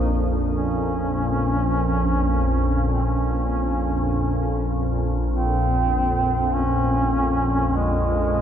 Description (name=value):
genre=dark ambient drone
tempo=50 BPM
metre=4/4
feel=straight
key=Bb minor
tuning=A4 = 437 Hz
part: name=warm duduk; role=melody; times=0.0-8.4 s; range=Ab3 to Eb4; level=-24 LUFS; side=right 1 dB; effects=diffuse ambient delay
part: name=organ-like drone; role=drone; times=0.0-8.4 s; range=Bb1 to F2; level=-21 LUFS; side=equal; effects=ensemble chorus, built-in reverb
room=wet cathedral reverb, RT60 6.1 s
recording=dark, warm production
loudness=-19 LUFS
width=side -9 dB against mid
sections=0.0-8.4 A section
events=filter sweep on synth drone 0.0-8.4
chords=0.0 Bbm